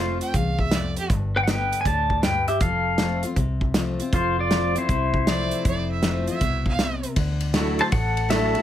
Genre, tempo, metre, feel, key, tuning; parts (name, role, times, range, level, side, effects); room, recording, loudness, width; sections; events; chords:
honky-tonk and classic country; 158 BPM; 4/4; swing 65% on 8ths; A4 = 441 Hz
pedal steel guitar; melody; 0.0-8.6 s; E4 to A5; -24 LUFS; left 1 dB
picked steel-string acoustic guitar; accompaniment; 0.0-8.6 s; E2 to G4; -28 LUFS; left 4 dB
vintage muted fingered electric bass; bass; 0.0-8.5 s; F1 to D2; -27 LUFS; equal
clear fiddle; second line; 0.2-1.1, 5.3-7.0 s; G4 to G5; -30 LUFS; right 4 dB
natural country drum kit; drums; 0.2-8.6 s; hi-hat, kick drum, ride cymbal, snare drum; -25 LUFS; equal
percussive tonewheel organ; accompaniment; 7.5-8.6 s; D4 to A4; -27 LUFS; right 5 dB; slow rotary speaker, overdrive, chorus vibrato
light reverb; close, detailed microphones; -20 LUFS; side -11 dB against mid
0.0-7.2 A section; 7.2-8.6 B section
0.0 F; 1.1 G; 2.6 F; 7.2 Dadd9